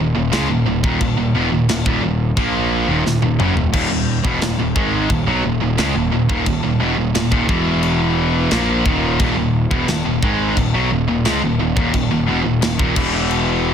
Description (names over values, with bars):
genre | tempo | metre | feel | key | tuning
heavy metal | 88 BPM | 4/4 | straight | unclear | A4 = 441 Hz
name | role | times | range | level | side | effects
distorted electric guitar | riff | 0.0-13.7 s | Eb2 to Bb3 | -21 LUFS | left 8 dB | overdrive
heavy high-gain guitar | riff | 0.0-13.7 s | Eb2 to Bb3 | -21 LUFS | right 10 dB | distortion
sludgy distorted guitar | riff | 0.0-13.7 s | Eb2 to Bb3 | -25 LUFS | equal | none
fuzz picked electric bass | bass | 0.0-13.7 s | Eb1 to Db2 | -22 LUFS | equal | overdrive
tight metal drum kit | drums | 0.3-13.5 s | china cymbal, crash cymbal, kick drum, snare drum, toms | -22 LUFS | equal | none
room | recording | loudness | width
light reverb | dense, heavily limited modern master | -15 LUFS | side -8 dB against mid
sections
0.0-13.7 A section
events
drum fill 3.0-3.7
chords
0.0 Ebm; 7.5 E5; 8.5 Eb5; 13.0 E5